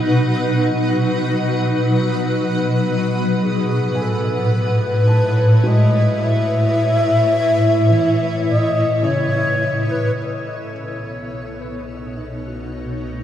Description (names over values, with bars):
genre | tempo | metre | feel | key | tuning
ambient | 53 BPM | 3/4 | straight | unclear | A4 = 440 Hz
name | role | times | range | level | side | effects
granular cloud pad | sustained chords | 0.0-13.2 s | A2 to F#5 | -17 LUFS | equal | built-in reverb, shimmer reverb
felt-muted upright piano | arpeggios | 0.0-13.2 s | C#3 to A5 | -28 LUFS | equal | tape echo
breathy wooden-headed alto flute | melody | 3.4-13.2 s | F#4 to E5 | -21 LUFS | left 2 dB | shimmer reverb, tape echo
round analog bass | bass | 10.2-13.2 s | B1 | -37 LUFS | equal | none
room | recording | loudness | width
wet huge ambient reverb, RT60 7.1 s | cassette tape, small room ambience | -15 LUFS | side -10 dB against mid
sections
0.0-10.2 A section; 10.2-13.2 B section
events
fade-in on felt piano 0.0-10.2; fade-in on analog synth bass 10.2-13.2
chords
0.0 B; 3.4 Aadd9; 10.2 B7